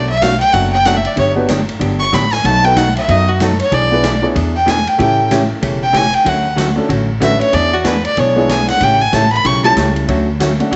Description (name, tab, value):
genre	country, western swing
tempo	189 BPM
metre	4/4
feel	swing 61% on 8ths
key	D major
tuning	A4 = 441 Hz
part	clear fiddle	second line	0.0-9.7 s	F#4 to C#6	-16 LUFS	equal	none
part	hollow-body jazz guitar	accompaniment	0.0-10.8 s	B2 to G#4	-21 LUFS	equal	none
part	upright bass	bass	0.0-10.8 s	E1 to F#2	-21 LUFS	equal	none
part	swinging big-band drum kit	drums	0.2-10.8 s	hi-hat, kick drum, ride cymbal, snare drum	-24 LUFS	equal	none
part	warm upright piano	accompaniment	1.4-10.8 s	F#3 to C#5	-21 LUFS	equal	none
room	moderate echo chamber reverb, RT60 1.5 s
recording	nothing above 8.0 kHz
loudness	-14 LUFS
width	mono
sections	0.0-10.8 A section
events	fiddle solo 0.0-10.8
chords	0.0 Bm7; 1.2 Gmaj7; 2.4 B7; 3.7 E7/B; 5.0 A7; 6.3 Dmaj7; 7.5 E7; 8.8 A7; 10.1 Dmaj7